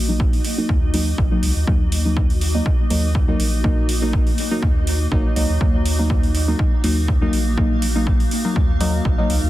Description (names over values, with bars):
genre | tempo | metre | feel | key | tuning
dub techno | 122 BPM | 4/4 | swing 54% on 16ths | Eb minor | A4 = 435 Hz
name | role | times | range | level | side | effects
granular cloud pad | sustained chords | 0.0-9.5 s | Bb3 to F5 | -28 LUFS | left 1 dB | built-in reverb, vintage 12-bit sampler grit, sidechain pumping
round analog bass | bass | 0.0-9.5 s | Bb1 to Eb2 | -21 LUFS | equal | sidechain pumping
deep mellow chord stab | stabs | 0.1-9.3 s | Gb3 to Eb4 | -23 LUFS | left 1 dB | chorus, phaser, cassette tape, sidechain pumping, dub echo
electronic kick drum | drums | 0.2-9.2 s | none | -19 LUFS | equal | none
electronic hi-hat | drums | 0.3-9.4 s | none | -28 LUFS | right 2 dB | overdrive
room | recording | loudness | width
little or no reverb | dense, heavily limited modern master | -16 LUFS | side -15 dB against mid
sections
0.0-9.5 A section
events
none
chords
0.0 Ebm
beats
0.20 0.69 1.18 | 1.68 2.17 2.66 3.15 | 3.64 4.13 4.63 5.12 | 5.61 6.10 6.59 7.08 | 7.58 8.07 8.56 9.05